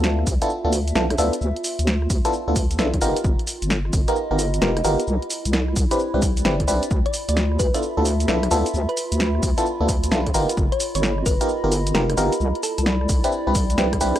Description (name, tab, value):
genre	UK garage, two-step garage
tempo	131 BPM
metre	4/4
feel	swing 65% on 16ths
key	D dorian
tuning	A4 = 441 Hz
part	FM electric piano	stabs	0.0-14.2 s	B3 to B4	-23 LUFS	equal	chorus, phaser, tape echo
part	deep soft wobble bass	bass	0.0-14.1 s	F1 to D2	-22 LUFS	equal	chorus, sidechain pumping
part	punchy analog drum machine	drums	0.0-14.2 s	hi-hat, rim click, shaker, snare drum	-26 LUFS	equal	none
part	warbly tape-like pad	texture	0.0-14.2 s	E4 to B5	-30 LUFS	right 1 dB	chorus, built-in reverb, sidechain pumping
part	electronic kick drum	drums	0.3-14.0 s	none	-23 LUFS	equal	none
part	thumb-piano-like synth pluck	melody	7.1-12.8 s	A4 to D5	-28 LUFS	left 1 dB	chorus, phaser, tape echo
room	little or no reverb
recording	dry, gritty hardware recording, transformer saturation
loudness	-18 LUFS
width	side -12 dB against mid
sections	0.0-14.2 A section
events	drum fill 13.8-14.2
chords	0.0 Dm69; 3.0 G7alt; 5.1 Cmaj9; 6.9 Dm69; 10.3 G7alt; 12.4 Cmaj9